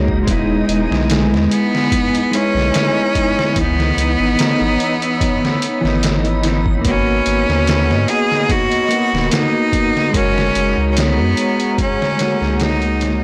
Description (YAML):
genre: trip hop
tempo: 73 BPM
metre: 4/4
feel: swing 54% on 16ths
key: G# minor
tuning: A4 = 440 Hz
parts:
  - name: mellow electric guitar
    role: accompaniment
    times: 0.0-13.2 s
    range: E3 to A#4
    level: -23 LUFS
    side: equal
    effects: tremolo, vintage 12-bit sampler grit
  - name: deep dark ambient pad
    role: sustained chords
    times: 0.0-13.2 s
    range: G#4 to E6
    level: -30 LUFS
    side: equal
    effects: chorus, built-in reverb
  - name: warm sub bass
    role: bass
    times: 0.0-13.2 s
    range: D#1 to G#2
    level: -22 LUFS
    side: equal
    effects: tube saturation
  - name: backwards swelling texture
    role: texture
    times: 0.0-13.2 s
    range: D#4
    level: -29 LUFS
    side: equal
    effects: built-in reverb
  - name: trip hop sampler-style drum kit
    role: drums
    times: 0.1-13.2 s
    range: hi-hat, kick drum, snare drum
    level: -23 LUFS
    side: equal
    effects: overdrive
  - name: bright cello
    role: melody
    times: 0.3-13.2 s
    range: G#3 to G#4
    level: -20 LUFS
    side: equal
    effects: dub echo
room: light reverb, digital ambience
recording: blown-out, overdriven recording, vinyl crackle, overdrive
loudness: -16 LUFS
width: mono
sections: 0.0-13.2 A section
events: fade-out 11.2-13.2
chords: 0.3 E; 3.6 C#m7; 6.8 G#m7; 10.1 F#add9